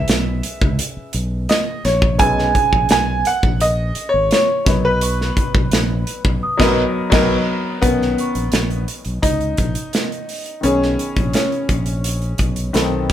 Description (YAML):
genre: lush 1970s-style soul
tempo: 85 BPM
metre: 4/4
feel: straight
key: B major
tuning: A4 = 440 Hz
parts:
  - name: clear grand piano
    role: melody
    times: 0.0-12.7 s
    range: B3 to G#5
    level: -20 LUFS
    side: equal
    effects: none
  - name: clear concert grand piano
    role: accompaniment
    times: 0.0-13.1 s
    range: D#3 to B4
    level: -22 LUFS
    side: left 3 dB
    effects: none
  - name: fingered electric bass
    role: bass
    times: 0.0-13.1 s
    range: G#1 to C#2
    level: -22 LUFS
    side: equal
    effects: none
  - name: worn celesta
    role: texture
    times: 0.0-10.3 s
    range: G#5 to D#6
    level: -27 LUFS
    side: equal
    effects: none
  - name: modern studio drum kit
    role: drums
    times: 0.1-13.1 s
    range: crash cymbal, hi-hat, kick drum, snare drum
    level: -19 LUFS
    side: equal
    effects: none
  - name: electric guitar through a small old amp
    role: riff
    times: 6.6-7.4 s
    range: B4 to D#5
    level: -24 LUFS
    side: right 6 dB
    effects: spring reverb
room: moderate studio ambience, RT60 0.5 s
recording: band playing live in one room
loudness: -15 LUFS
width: side -11 dB against mid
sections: 0.0-7.8 A section; 7.8-13.1 B section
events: band accent 6.4-7.8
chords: 0.0 C#m7/B; 2.2 B69; 4.7 Bmaj7; 7.8 Bmaj9